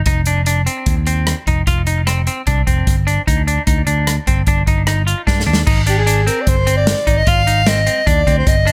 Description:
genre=progressive instrumental, band music in an uneven meter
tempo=150 BPM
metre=7/4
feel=straight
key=Ab lydian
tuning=A4 = 440 Hz
part: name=semi-hollow electric guitar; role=arpeggios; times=0.1-8.7 s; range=C4 to F4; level=-23 LUFS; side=equal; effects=tape echo
part: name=picked electric bass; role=bass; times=0.1-8.7 s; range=F1 to G2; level=-19 LUFS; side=equal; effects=none
part: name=swinging big-band drum kit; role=drums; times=0.1-8.7 s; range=crash cymbal, hi-hat, kick drum, rim click, snare drum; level=-20 LUFS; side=equal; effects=none
part: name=warm soprano saxophone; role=melody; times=5.9-8.7 s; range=G4 to F5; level=-19 LUFS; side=equal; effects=tape echo
room=little or no reverb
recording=none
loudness=-15 LUFS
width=mono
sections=0.0-5.7 A section; 5.7-8.7 B section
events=drum fill 5.3-5.7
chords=0.1 F5; 2.9 G5; 5.7 Abmaj7

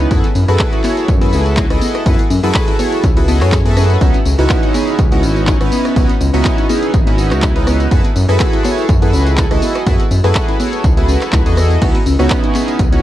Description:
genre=deep house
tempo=123 BPM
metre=4/4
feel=swing 54% on 16ths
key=unclear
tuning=A4 = 440 Hz
part: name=chorused polysynth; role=stabs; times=0.0-13.0 s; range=B3 to D#5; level=-17 LUFS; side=right 1 dB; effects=sidechain pumping, analog delay
part: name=smooth gliding synth bass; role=bass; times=0.0-13.0 s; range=G#1 to F#2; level=-15 LUFS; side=equal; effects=sidechain pumping
part: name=punchy analog drum machine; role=drums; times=0.0-13.0 s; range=crash cymbal, handclaps, hi-hat, rim click, tambourine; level=-24 LUFS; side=equal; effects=none
part: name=soft round pluck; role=arpeggios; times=0.1-12.6 s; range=B3 to B4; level=-23 LUFS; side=left 3 dB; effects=chorus, sidechain pumping, tape echo
part: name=electronic kick drum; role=drums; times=0.1-12.9 s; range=none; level=-15 LUFS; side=equal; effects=none
room=little or no reverb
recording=echo-heavy mix, cassette tape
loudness=-11 LUFS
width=side -13 dB against mid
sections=0.0-13.0 A section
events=none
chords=0.1 F#m11; 4.0 C#m11; 7.9 F#m11; 11.8 C#m11

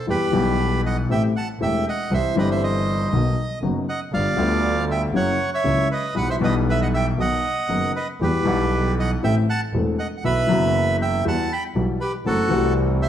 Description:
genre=tango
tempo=118 BPM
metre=4/4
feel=rubato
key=E harmonic minor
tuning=A4 = 439 Hz
part: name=bandoneon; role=melody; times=0.0-13.1 s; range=F#4 to B5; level=-24 LUFS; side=right 2 dB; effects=none
part: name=warm baby grand piano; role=accompaniment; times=0.1-13.1 s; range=E1 to F#5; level=-22 LUFS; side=left 3 dB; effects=none
part: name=clear double bass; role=bass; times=0.1-13.1 s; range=E1 to E2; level=-25 LUFS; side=right 2 dB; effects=none
room=moderate large studio reverb, RT60 1.2 s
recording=none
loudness=-19 LUFS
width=side -10 dB against mid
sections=0.1-13.1 A section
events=none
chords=0.1 Em; 1.1 Am7; 2.1 C; 3.1 B; 4.1 G7; 5.1 F#7; 6.1 Em/B; 7.2 B; 8.2 Emadd9; 9.2 Am; 10.2 Bsus4; 11.2 Emadd9; 12.3 F#m7b5

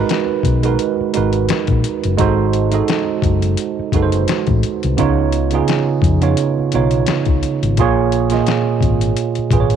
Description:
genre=R&B, neo-soul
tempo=86 BPM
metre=4/4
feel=swing 53% on 16ths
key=G# dorian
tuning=A4 = 442 Hz
part: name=mellow tine electric piano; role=accompaniment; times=0.0-9.8 s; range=A#2 to D#5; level=-16 LUFS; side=right 8 dB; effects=analog chorus
part: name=hollow-body short-scale fingered electric bass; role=bass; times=0.0-9.8 s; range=F#1 to E#2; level=-17 LUFS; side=left 2 dB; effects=tube saturation
part: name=boom bap sampler-style drum kit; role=drums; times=0.1-9.8 s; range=hi-hat, kick drum, snare drum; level=-20 LUFS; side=left 5 dB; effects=none
room=light reverb, digital ambience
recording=1960s-style stereo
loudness=-14 LUFS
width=side -8 dB against mid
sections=0.0-9.8 A section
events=none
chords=0.0 G#m9; 2.2 G#7b9; 5.0 C#7; 7.8 A#m7

